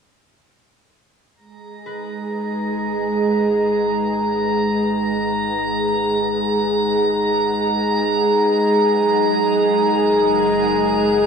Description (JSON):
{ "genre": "ambient", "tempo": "free time", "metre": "none", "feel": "none", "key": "G# minor", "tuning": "A4 = 440 Hz", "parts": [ { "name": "drifting glass-harmonics texture", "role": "texture", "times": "1.7-11.3 s", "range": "A#5", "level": "-22 LUFS", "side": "right 3 dB", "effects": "chorus, built-in reverb, shimmer reverb" }, { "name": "airy breathy pad", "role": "sustained chords", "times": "1.4-11.3 s", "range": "F#3 to F#5", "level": "-26 LUFS", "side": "left 2 dB", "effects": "chorus, shimmer reverb" }, { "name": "round analog bass", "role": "bass", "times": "1.4-11.3 s", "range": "F#1 to G#1", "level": "-43 LUFS", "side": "equal", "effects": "none" }, { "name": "bowed-like drone", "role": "drone", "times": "1.9-11.3 s", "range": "G#3 to G#4", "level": "-18 LUFS", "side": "equal", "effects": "built-in reverb" }, { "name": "concert harp", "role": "arpeggios", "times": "1.9-5.3 s", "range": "B4", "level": "-44 LUFS", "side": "left 2 dB", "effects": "none" } ], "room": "wet cathedral reverb, RT60 6.2 s", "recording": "small room ambience", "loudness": "-16 LUFS", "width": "side -6 dB against mid", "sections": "1.4-11.3 A section", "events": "fade-in on analog synth pad 1.4-11.3; fade-in on analog synth bass 1.4-11.3", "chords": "1.4 G#m7; 8.9 F#6" }